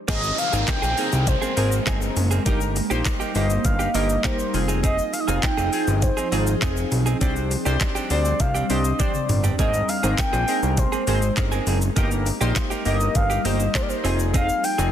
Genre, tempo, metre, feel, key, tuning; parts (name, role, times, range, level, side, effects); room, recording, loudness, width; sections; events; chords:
dance-pop; 101 BPM; 4/4; straight; A4 = 442 Hz
mellow horn-like synth lead; melody; 0.1-14.9 s; C5 to G5; -26 LUFS; equal; chorus
chorused retro synth keys; accompaniment; 0.1-14.9 s; Bb3 to C5; -29 LUFS; left 1 dB; sidechain pumping
ethereal airy pad; sustained chords; 1.1-14.9 s; F3 to G5; -30 LUFS; right 1 dB; ensemble chorus, built-in reverb, phaser, sidechain pumping
direct-recorded clean electric guitar; riff; 0.1-14.9 s; Bb3 to Ab4; -30 LUFS; right 6 dB; wide subtle chorus
fat analog bass; bass; 0.1-14.9 s; F1 to D2; -23 LUFS; equal; sidechain pumping
smooth R&B drum kit; drums; 0.1-14.9 s; crash cymbal, handclaps, hi-hat, kick drum, shaker, toms; -25 LUFS; equal; soft clipping on snare
egg shaker; percussion; 0.1-14.9 s; -40 LUFS; left 9 dB
downlifter; sound effects; 0.1-4.8 s; -30 LUFS; right 1 dB
light reverb; dense, heavily limited modern master; -19 LUFS; side -10 dB against mid
0.1-14.9 A section
drum fill 9.0-9.6
0.1 Abadd9; 2.5 Eb/G; 4.5 Fm7; 7.2 Csus2; 9.6 Abadd9; 12.0 Eb/G; 14.0 Fm7